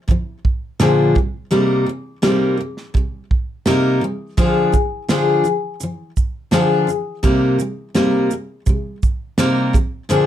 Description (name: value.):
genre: acoustic pop.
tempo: 84 BPM.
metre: 4/4.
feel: straight.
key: C minor.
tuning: A4 = 440 Hz.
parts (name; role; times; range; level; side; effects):
picked steel-string acoustic guitar; accompaniment; 0.0-10.3 s; Bb2 to Bb4; -16 LUFS; left 1 dB; none.
natural country drum kit; drums; 0.1-10.3 s; kick drum, shaker, snare drum; -18 LUFS; right 2 dB; none.
room: moderate studio ambience, RT60 0.5 s.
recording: dark, warm production.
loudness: -16 LUFS.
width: side -11 dB against mid.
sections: 0.0-10.3 A section.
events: none.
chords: 0.0 Bb7; 1.2 Cm7; 4.4 Ddim; 7.2 Cm7; 9.7 Bb7.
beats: 0.09 0.80 | 1.52 2.23 2.95 3.66 | 4.38 5.09 5.81 6.53 | 7.24 7.96 8.67 9.39 | 10.10.